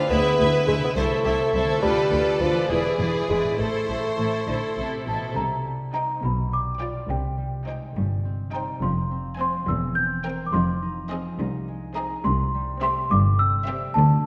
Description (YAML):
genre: cinematic, playful, whimsical film cue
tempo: 69 BPM (dotted quarters)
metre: 6/8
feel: straight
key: A minor, C minor from 5.4 s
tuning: A4 = 441 Hz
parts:
  - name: clear studio violin section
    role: melody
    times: 0.0-13.9 s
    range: G4 to Ab5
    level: -38 LUFS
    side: equal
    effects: none
  - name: rich studio violin section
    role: second line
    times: 0.0-13.9 s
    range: G4 to E5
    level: -35 LUFS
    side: equal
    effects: none
  - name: clear studio viola section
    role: accompaniment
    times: 0.0-13.9 s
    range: C4 to B4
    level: -34 LUFS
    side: equal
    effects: none
  - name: mellow bassoon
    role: accompaniment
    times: 0.0-5.0 s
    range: E3 to B3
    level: -25 LUFS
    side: equal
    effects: none
  - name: concert harp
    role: arpeggios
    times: 0.0-14.3 s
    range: A2 to E5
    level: -33 LUFS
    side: equal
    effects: none
  - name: rich studio cello section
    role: bass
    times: 0.1-14.3 s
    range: C2 to D3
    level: -32 LUFS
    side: equal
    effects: none
  - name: rich studio double bass section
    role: bass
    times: 0.1-14.3 s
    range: E1 to D2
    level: -31 LUFS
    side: equal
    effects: none
  - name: worn celesta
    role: melody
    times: 5.1-14.3 s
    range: G5 to G6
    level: -29 LUFS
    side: equal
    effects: none
room: wet scoring stage reverb, RT60 1.9 s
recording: none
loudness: -24 LUFS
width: mono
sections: 0.0-5.4 A section; 5.4-14.3 B section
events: none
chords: 0.1 E7/D; 1.0 Am/C; 1.8 Bdim/D; 2.7 E7; 3.6 Am; 5.4 Cm; 6.2 G7/B; 7.1 Cm; 8.8 Fm; 9.7 C7/E; 10.5 Fm7; 12.3 C